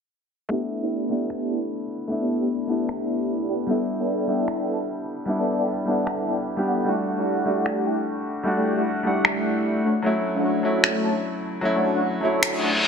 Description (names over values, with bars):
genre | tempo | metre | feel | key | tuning
future bass | 151 BPM | 4/4 | swing 55% on 16ths, half-time | G lydian | A4 = 438 Hz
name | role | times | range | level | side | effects
warm grand piano | accompaniment | 0.5-12.9 s | F#3 to F#5 | -26 LUFS | left 1 dB | tape echo
soft supersaw | riff | 0.5-12.7 s | A3 to A5 | -24 LUFS | equal | phaser, low-pass filter, tape echo
electronic finger snaps | drums | 1.3-12.5 s | none | -23 LUFS | equal | overdrive, soft clipping on snare
reverse cymbal | sound effects | 12.6-12.9 s | none | -20 LUFS | left 1 dB | none
room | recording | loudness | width
moderate lush hall reverb, RT60 1.9 s, digital ambience | dense, heavily limited modern master, low-pass filter | -21 LUFS | side -6 dB against mid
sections
0.5-12.9 A section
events
filter sweep 0.5-12.9; reverse cymbal 12.6-12.9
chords
0.5 G6; 3.7 A9sus4; 6.9 Em11; 9.8 Dmaj7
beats
| 0.51 0.90 1.30 1.70 | 2.10 2.49 2.89 3.29 | 3.69 4.08 4.48 4.88 | 5.28 5.67 6.07 6.47 | 6.86 7.26 7.66 8.06 | 8.45 8.85 9.25 9.65 | 10.04 10.44 10.84 11.23 | 11.63 12.03 12.43 12.82